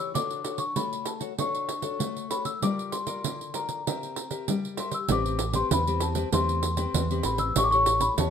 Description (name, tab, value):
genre	samba and choro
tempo	97 BPM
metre	4/4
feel	straight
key	A minor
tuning	A4 = 441 Hz
part	large celesta	melody	0.0-8.3 s	A5 to E6	-28 LUFS	left 2 dB	none
part	nylon-string guitar	accompaniment	0.0-8.3 s	D3 to E5	-32 LUFS	left 6 dB	none
part	pandeiro	percussion	0.2-8.3 s	none	-30 LUFS	right 7 dB	none
part	fingered electric bass	bass	5.1-8.3 s	A1 to E2	-29 LUFS	right 1 dB	none
room	moderate studio reverb, RT60 0.8 s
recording	minimal, uncompressed stereo recording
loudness	-25 LUFS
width	side -8 dB against mid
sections	0.0-5.1 A section; 5.1-8.3 B section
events	none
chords	0.1 Dmaj7; 2.6 Gm7; 3.9 C7; 5.1 Am9; 7.6 A7